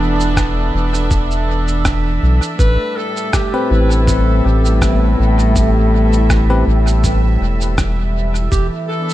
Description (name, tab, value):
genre	ambient dub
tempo	81 BPM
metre	4/4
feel	swing 55% on 16ths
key	A minor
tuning	A4 = 440 Hz
part	dark chamber string section	sustained chords	0.0-9.1 s	A2 to A4	-20 LUFS	equal	none
part	soft dub sub bass	bass	0.0-8.7 s	E1 to B1	-14 LUFS	equal	none
part	bubbling stepped-filter texture	texture	0.0-9.1 s	E5	-28 LUFS	right 5 dB	chorus, built-in reverb
part	electronic cabasa and rim click	drums	0.2-9.1 s	none	-26 LUFS	right 1 dB	studio reverb, dub echo
part	electronic kick drum	drums	0.4-8.7 s	none	-18 LUFS	equal	studio reverb
part	warm clarinet	melody	2.6-9.1 s	E4 to B4	-26 LUFS	equal	tape echo
part	bell-like tine electric piano	stabs	3.5-6.6 s	C4 to B4	-22 LUFS	left 4 dB	dub echo
part	handpan	arpeggios	4.9-7.7 s	B3 to A4	-26 LUFS	equal	tape echo
room	studio reverb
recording	none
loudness	-12 LUFS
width	side -14 dB against mid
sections	0.0-9.1 A section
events	none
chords	0.0 E7sus4; 2.6 Am7; 8.5 E7sus4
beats	0.37 1.11 1.85 | 2.59 3.33 4.07 4.81 | 5.55 6.30 7.04 7.78 | 8.52